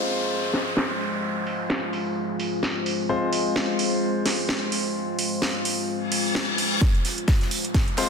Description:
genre	bass house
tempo	129 BPM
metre	4/4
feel	swing 57% on 16ths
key	F minor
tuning	A4 = 441 Hz
part	deep dark ambient pad	sustained chords	0.7-8.1 s	Ab3 to C5	-29 LUFS	left 1 dB	chorus, built-in reverb, sidechain pumping
part	warm grand piano	stabs	0.0-8.1 s	Ab3 to C5	-29 LUFS	left 3 dB	sidechain pumping, low-pass filter, dub echo
part	downlifter, reverse cymbal and riser	sound effects	0.0-8.1 s	none	-30 LUFS	left 1 dB	none
part	house drum kit	drums	0.1-8.1 s	hi-hat, snare drum	-27 LUFS	right 1 dB	low-pass filter on hats, low-pass filter on perc, low-pass filter on snare, low-pass filter on room
part	electronic kick drum	drums	6.8-7.8 s	none	-20 LUFS	equal	none
part	tambourine and snare drum	drums	6.8-8.1 s	none	-34 LUFS	right 2 dB	sidechain pumping on hats, high-pass filter on hats, high-pass filter on snare, sidechain pumping on perc, high-pass filter on perc, high-pass filter on room
room	moderate lush hall reverb, RT60 2.0 s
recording	dense, heavily limited modern master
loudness	-22 LUFS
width	side -6 dB against mid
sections	0.0-6.8 A section; 6.8-8.1 B section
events	filter sweep on drum 0.0-6.8; filter sweep on grand piano 0.0-6.8, 6.8-8.1; reverse cymbal 6.0-6.8; build-up 6.8-8.1; drum fill 6.8-8.1; riser 6.8-8.1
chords	0.0 Fm

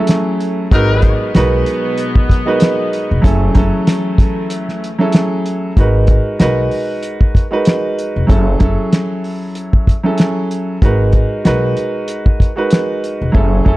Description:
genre	hip hop, boom-bap hip-hop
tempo	95 BPM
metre	4/4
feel	swing 55% on 16ths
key	G# phrygian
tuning	A4 = 440 Hz
part	dark grand piano	accompaniment	0.0-13.8 s	F#3 to B4	-16 LUFS	right 1 dB	cassette tape, high-pass filter, low-pass filter
part	warm studio string section	sustained chords	0.0-5.7 s	B2 to B3	-24 LUFS	left 2 dB	high-pass filter, low-pass filter
part	cloth-damped thuddy drum kit	drums	0.1-13.8 s	hi-hat, kick drum, snare drum	-12 LUFS	equal	none
part	warm horn section	stabs	0.7-1.1 s	F#3 to A#4	-21 LUFS	left 5 dB	high-pass filter, low-pass filter, ping-pong delay
part	upright bass	bass	0.7-13.8 s	E1 to B1	-16 LUFS	equal	none
room	small room ambience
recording	dark, warm production, faint mains hum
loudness	-12 LUFS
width	side -18 dB against mid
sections	0.0-5.8 A section; 5.8-13.8 B section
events	break 4.5-5.8; hi-hats muted 13.3-13.8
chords	0.0 F#m9; 0.7 G#m9; 3.2 F#m9; 5.8 G#m9; 8.3 F#m9; 10.8 G#m9

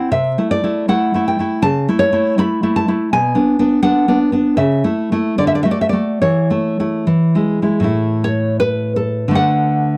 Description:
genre	romantic piece for solo classical guitar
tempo	69-88 BPM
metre	2/4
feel	rubato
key	A major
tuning	A4 = 440 Hz
part	nylon-string guitar	solo	0.0-10.0 s	A2 to B5	-16 LUFS	equal	none
room	little or no reverb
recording	dry, close 1970s-style studio recording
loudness	-16 LUFS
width	mono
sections	0.0-7.9 A section; 7.9-10.0 B section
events	none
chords	0.1 Am/C; 1.6 A/C#; 3.1 Bm; 4.6 A/C#; 5.4 D; 6.2 A/E; 7.1 E; 7.9 A5; 9.4 D

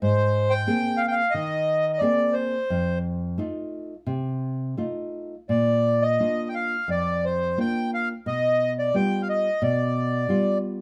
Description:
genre	fado-style ballad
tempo	88 BPM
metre	4/4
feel	rubato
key	G minor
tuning	A4 = 440 Hz
part	accordion	melody	0.0-10.6 s	C5 to G5	-26 LUFS	equal	none
part	nylon-string guitar	accompaniment	0.0-10.8 s	F2 to Ab4	-28 LUFS	equal	none
room	wet small room reverb, RT60 0.5 s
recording	faint mains hum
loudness	-24 LUFS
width	mono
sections	0.0-10.8 A section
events	none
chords	0.0 Abadd9; 2.7 F7; 5.5 Bb; 8.2 G7/B

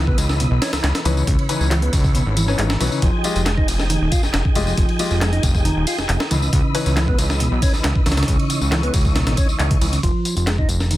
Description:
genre	breakbeat, breaks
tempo	137 BPM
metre	4/4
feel	straight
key	unclear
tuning	A4 = 440 Hz
part	tonewheel organ	sustained chords	0.0-10.0 s	Fb3 to Db5	-27 LUFS	equal	chorus vibrato, fast rotary speaker, vintage 12-bit sampler grit, sidechain pumping
part	percussive tonewheel organ	riff	0.0-11.0 s	Cb3 to F4	-24 LUFS	equal	slow rotary speaker, vintage 12-bit sampler grit, tape echo
part	fat analog bass	bass	0.0-11.0 s	Eb1 to Db2	-20 LUFS	equal	none
part	breakbeat sampler-style drum kit	drums	0.1-11.0 s	hi-hat, kick drum, snare drum	-20 LUFS	equal	none
part	house drum kit	drums	0.2-11.0 s	handclaps, ride cymbal, tambourine	-28 LUFS	left 1 dB	none
part	clear grand piano	stabs	1.1-6.9 s	Fb3 to Eb5	-28 LUFS	left 5 dB	tape echo
room	little or no reverb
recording	dense, heavily limited modern master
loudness	-16 LUFS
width	side -15 dB against mid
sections	0.0-10.0 A section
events	drop 0.0-10.0; band accent 9.6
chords	0.0 Dbm9; 3.0 Fm9; 6.3 Dbm9; 10.0 Fm7

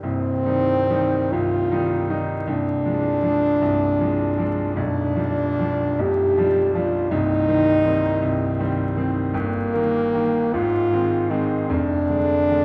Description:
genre	classical, romantic duo for French horn and grand piano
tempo	45-55 BPM (dotted quarters)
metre	6/8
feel	rubato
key	C minor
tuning	A4 = 440 Hz
part	mellow French horn	melody	0.0-12.6 s	Bb3 to G4	-23 LUFS	equal	none
part	bright concert grand piano	accompaniment	0.0-12.6 s	B0 to Eb4	-25 LUFS	equal	none
room	moderate concert hall reverb, RT60 2.1 s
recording	vinyl crackle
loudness	-21 LUFS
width	mono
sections	0.0-12.6 A section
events	none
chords	0.0 Cm; 2.5 Dm7b5/C; 4.8 G7/B; 7.1 Cm; 9.3 Eb/G; 10.5 Ab; 11.7 Ddim/F

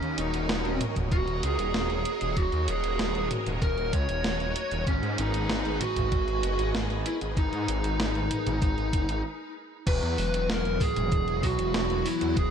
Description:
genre	synthwave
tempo	96 BPM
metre	4/4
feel	straight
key	G# minor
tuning	A4 = 441 Hz
part	fuzz lead guitar	melody	0.0-12.5 s	C#4 to C#5	-30 LUFS	equal	distortion, ping-pong delay
part	string machine, full ensemble	sustained chords	0.0-12.5 s	E3 to D#5	-35 LUFS	equal	phaser, ensemble chorus, sidechain pumping
part	wide detuned saw bass	bass	0.0-12.5 s	D#1 to G#2	-30 LUFS	equal	chorus
part	gated 80s digital drum machine	drums	0.0-12.5 s	crash cymbal, hi-hat, snare drum, toms	-32 LUFS	right 1 dB	gated reverb, gated reverb snare
part	electronic kick drum	drums	1.0-12.5 s	none	-27 LUFS	equal	none
room	light reverb, digital ambience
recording	none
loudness	-25 LUFS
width	side -8 dB against mid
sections	0.0-9.9 A section; 9.9-12.5 B section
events	break 9.2-9.9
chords	0.0 D#m7; 4.9 G#madd9; 9.9 Esus2

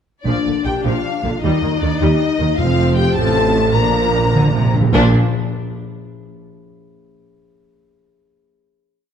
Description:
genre	cinematic, heroic adventure film score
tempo	103 BPM (dotted quarters)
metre	6/8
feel	straight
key	Bb major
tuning	A4 = 440 Hz
part	warm symphonic violin section	melody	0.2-5.2 s	D4 to Bb5	-24 LUFS	left 5 dB	none
part	dark French horn section	sustained chords	0.2-5.1 s	D4 to Bb4	-21 LUFS	left 3 dB	none
part	rich symphonic violin section	second line	0.3-5.2 s	D4 to Bb5	-27 LUFS	left 3 dB	none
part	warm symphonic viola section	accompaniment	0.3-5.2 s	D3 to Eb4	-23 LUFS	equal	none
part	clear symphonic double bass section	bass	0.3-5.1 s	F1 to Eb2	-20 LUFS	right 3 dB	none
part	warm symphonic cello section	bass	0.3-5.1 s	Eb2 to D3	-21 LUFS	right 2 dB	none
part	timpani	percussion	2.6-5.1 s	F2 to Bb2	-21 LUFS	right 1 dB	none
room	moderate scoring stage reverb, RT60 1.9 s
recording	dark, warm production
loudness	-14 LUFS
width	side -8 dB against mid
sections	0.3-4.9 theme; 4.9-6.1 final chord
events	timpani fill 3.8-4.9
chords	0.3 Bb; 1.4 Eb; 2.6 F; 3.8 Bb

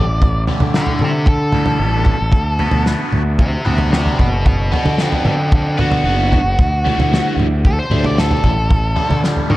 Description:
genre	psychedelic rock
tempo	113 BPM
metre	4/4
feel	straight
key	D mixolydian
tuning	A4 = 440 Hz
part	octave-fuzz lead guitar	melody	0.0-9.6 s	F4 to F5	-21 LUFS	equal	distortion, dub echo
part	crunchy overdriven guitar	riff	0.0-9.6 s	D2 to B4	-22 LUFS	equal	phaser, dub echo
part	fuzz fingered electric bass	bass	0.0-9.6 s	F#1 to D3	-18 LUFS	equal	overdrive
part	damped 70s drum kit	drums	0.2-9.6 s	kick drum, snare drum, toms	-17 LUFS	equal	none
room	light reverb, studio ambience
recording	echo-heavy mix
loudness	-13 LUFS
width	side -17 dB against mid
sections	0.0-9.6 A section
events	lead electric guitar solo 0.0-9.6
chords	0.0 Dsus4; 2.3 Bm; 6.6 Dsus4

